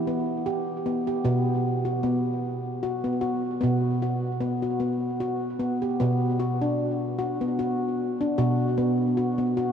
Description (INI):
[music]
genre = world meditative, meditative tuned percussion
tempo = 76 BPM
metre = 3/4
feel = swing 55% on 16ths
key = B minor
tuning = A4 = 439 Hz
[part]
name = handpan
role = solo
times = 0.0-9.7 s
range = B2 to G4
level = -24 LUFS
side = equal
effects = tape echo
[sound]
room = wet huge ambient reverb, RT60 8.1 s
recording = in a vast, echoing space, cassette tape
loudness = -24 LUFS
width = side -8 dB against mid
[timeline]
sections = 0.0-6.0 A section; 6.0-9.7 B section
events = none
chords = 0.0 Em; 1.3 B5; 6.0 Bm